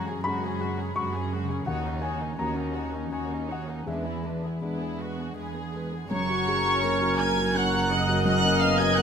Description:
cinematic, emotional film score for orchestra; 83 BPM; 3/4; rubato; F# major; A4 = 440 Hz
warm studio violin section; melody; 0.0-9.0 s; F#4 to G#6; -32 LUFS; equal
warm symphonic violin section; second line; 0.0-9.0 s; D4 to G#5; -34 LUFS; left 1 dB
felt-muted upright piano; accompaniment; 0.0-9.0 s; D#2 to C#6; -31 LUFS; left 1 dB
warm symphonic viola section; accompaniment; 0.0-9.0 s; G#3 to D#5; -34 LUFS; left 1 dB
concert harp; arpeggios; 0.0-9.0 s; F#2 to A#4; -38 LUFS; left 9 dB
dark chamber cello section; bass; 0.0-9.0 s; D#2 to F#2; -32 LUFS; right 4 dB
clear oboe; second line; 6.1-9.0 s; C#5 to G#5; -32 LUFS; right 3 dB
mellow flute section; second line; 6.1-9.0 s; A#5; -33 LUFS; equal
warm clarinet; second line; 6.1-9.0 s; C#4; -34 LUFS; left 2 dB
warm French horn section; sustained chords; 6.1-9.0 s; C#3 to A#4; -33 LUFS; left 3 dB
warm symphonic double bass section; bass; 6.1-9.0 s; F#1; -31 LUFS; right 5 dB
light reverb; close, detailed microphones; -24 LUFS; side -7 dB against mid
0.0-6.1 A section; 6.1-9.0 B section
0.0 F#sus2; 1.7 D#m7; 3.9 E7; 6.1 F#

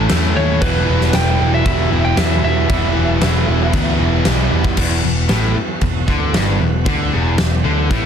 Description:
hard rock; 115 BPM; 4/4; straight; E minor; A4 = 441 Hz
lightly driven lead guitar; melody; 0.0-4.2 s; B4 to G5; -22 LUFS; right 2 dB; plate reverb, tape echo
tonewheel organ; sustained chords; 0.0-8.1 s; E3 to B4; -28 LUFS; equal
distorted electric guitar; riff; 0.0-8.1 s; E2 to A3; -24 LUFS; right 13 dB; distortion
overdriven semi-hollow guitar; riff; 0.0-8.1 s; E2 to E4; -23 LUFS; equal
scooped high-gain guitar; riff; 0.0-8.1 s; E2 to A3; -23 LUFS; left 12 dB; distortion
picked electric bass; bass; 0.0-8.1 s; E1 to E2; -18 LUFS; equal
huge arena drum kit; drums; 0.1-8.0 s; crash cymbal, kick drum, snare drum; -19 LUFS; equal
light reverb; dense, heavily limited modern master; -13 LUFS; side -8 dB against mid
0.0-4.8 A section; 4.8-8.1 B section
0.0 A; 0.6 Em

